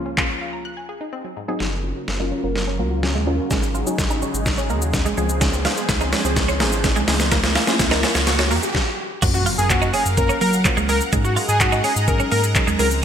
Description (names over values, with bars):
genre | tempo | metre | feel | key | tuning
dance-pop | 126 BPM | 4/4 | straight | unclear | A4 = 440 Hz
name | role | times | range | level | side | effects
soft round pluck | accompaniment | 0.0-13.0 s | Db2 to C5 | -28 LUFS | left 1 dB | chorus, sidechain pumping, low-pass filter
analog pluck | arpeggios | 0.1-8.7 s | Ab2 to Ab6 | -33 LUFS | left 1 dB | none
smooth R&B drum kit | drums | 0.2-13.0 s | crash cymbal, handclaps, hi-hat, kick drum, shaker, snare drum | -21 LUFS | equal | gated reverb
supersaw pad | sustained chords | 1.6-13.0 s | Db3 to Bb5 | -29 LUFS | equal | analog chorus, sidechain pumping, low-pass filter
twelve-string electric guitar | riff | 1.6-12.9 s | Ab3 to Gb4 | -27 LUFS | right 5 dB | wide subtle chorus, low-pass filter
warm sub bass | bass | 1.6-13.0 s | Gb1 to Gb3 | -23 LUFS | equal | sidechain pumping
riser and impact | sound effects | 4.2-11.1 s | none | -30 LUFS | left 1 dB | none
octave-doubled lead | melody | 9.3-12.9 s | Gb4 to Bb4 | -22 LUFS | equal | chorus, sidechain pumping, digital delay
room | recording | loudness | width
moderate lush hall reverb, RT60 1.8 s | bright 1980s-style digital production | -17 LUFS | side -8 dB against mid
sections
0.0-1.6 A section; 1.6-9.2 B section; 9.2-13.0 C section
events
break 0.7-1.6; build-up 1.6-9.2; drum fill 1.6-8.7; filter sweep 1.6-9.2; riser 4.2-9.2; stop 8.7-9.2; drop 9.2-13.0; impact 9.2-11.1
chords
0.0 Bbm7/Db; 0.7 Ab7; 1.6 Gbmaj7; 3.5 Ab7sus4; 5.2 Dbmaj7; 7.1 Bbm7/Db; 9.2 Gbmaj7; 11.1 Ab7sus4